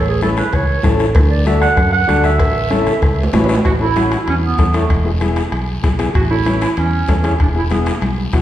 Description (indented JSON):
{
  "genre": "latin, cumbia",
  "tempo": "192 BPM",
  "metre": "4/4",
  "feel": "straight",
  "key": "A major",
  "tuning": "A4 = 440 Hz",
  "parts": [
    { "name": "warm clarinet", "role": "second line", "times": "0.0-8.2 s", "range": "G#3 to F#5", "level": "-19 LUFS", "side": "right 4 dB", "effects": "none" },
    { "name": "fingered electric bass", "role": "bass", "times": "0.0-8.4 s", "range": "E1 to F#2", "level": "-18 LUFS", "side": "equal", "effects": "none" },
    { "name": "overdriven combo organ", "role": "accompaniment", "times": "0.2-8.4 s", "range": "B3 to B4", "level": "-20 LUFS", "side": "left 3 dB", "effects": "none" },
    { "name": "bombo", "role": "percussion", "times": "0.2-8.4 s", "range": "none", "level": "-19 LUFS", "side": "left 1 dB", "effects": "none" },
    { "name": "congas", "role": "percussion", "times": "0.2-8.4 s", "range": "none", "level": "-26 LUFS", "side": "left 2 dB", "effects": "none" },
    { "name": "guiro", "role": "percussion", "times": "0.2-8.4 s", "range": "none", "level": "-33 LUFS", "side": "left 3 dB", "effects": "none" },
    { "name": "cowbell and timbales", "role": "percussion", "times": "0.5-8.4 s", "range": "none", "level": "-24 LUFS", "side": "right 2 dB", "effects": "none" }
  ],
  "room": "wet recital hall reverb, RT60 1.6 s",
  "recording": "recorded in a church or concert hall",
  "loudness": "-13 LUFS",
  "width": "side -12 dB against mid",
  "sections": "0.0-3.6 A section; 3.6-8.4 B section",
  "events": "clarinet solo 0.0-3.6, 3.6-8.4; drum fill 2.7-3.6, 8.0-8.4",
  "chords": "0.0 A; 1.2 D; 2.4 A; 4.9 E; 6.1 A; 7.4 E"
}